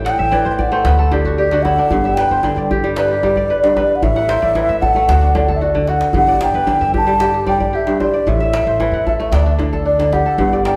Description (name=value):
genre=west african traditional, West African string and xylophone music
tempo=113 BPM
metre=4/4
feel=straight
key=G major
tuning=A4 = 440 Hz
part: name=kora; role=arpeggios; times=0.0-10.8 s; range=G2 to A5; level=-22 LUFS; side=equal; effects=none
part: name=upright bass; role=bass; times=0.0-10.7 s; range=G1 to A2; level=-22 LUFS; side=equal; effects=none
part: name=breathy mellow concert flute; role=melody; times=0.1-10.8 s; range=D5 to A5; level=-18 LUFS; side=equal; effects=none
part: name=djembe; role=percussion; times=0.1-10.8 s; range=none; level=-25 LUFS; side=equal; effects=none
room=wet stone room reverb, RT60 1.4 s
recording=band playing live in one room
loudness=-15 LUFS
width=mono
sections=0.0-6.1 A section; 6.1-10.8 A section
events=kora fill 0.0-1.9; drum fill 5.6-6.1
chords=0.0 A5; 0.9 D13; 1.9 G; 4.0 Am; 5.1 D; 6.1 G; 8.3 Am; 9.3 D5